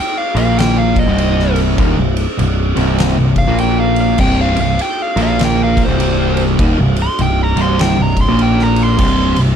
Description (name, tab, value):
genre	stoner and doom metal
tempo	100 BPM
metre	4/4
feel	swing 63% on 8ths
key	C minor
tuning	A4 = 436 Hz
part	fuzz lead guitar	melody	0.0-9.4 s	C5 to C6	-19 LUFS	equal	distortion, digital delay
part	overdriven picked electric bass	bass	0.3-9.6 s	C1 to Bb1	-17 LUFS	equal	none
part	fuzz guitar	riff	0.4-9.5 s	C2 to Bb3	-15 LUFS	equal	distortion
part	oversized low-tuned drum kit	drums	0.4-9.5 s	crash cymbal, kick drum, ride cymbal, snare drum	-18 LUFS	equal	none
room	little or no reverb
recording	dark, warm production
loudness	-11 LUFS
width	side -8 dB against mid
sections	0.0-9.6 A section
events	lead electric guitar solo 0.0-9.6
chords	none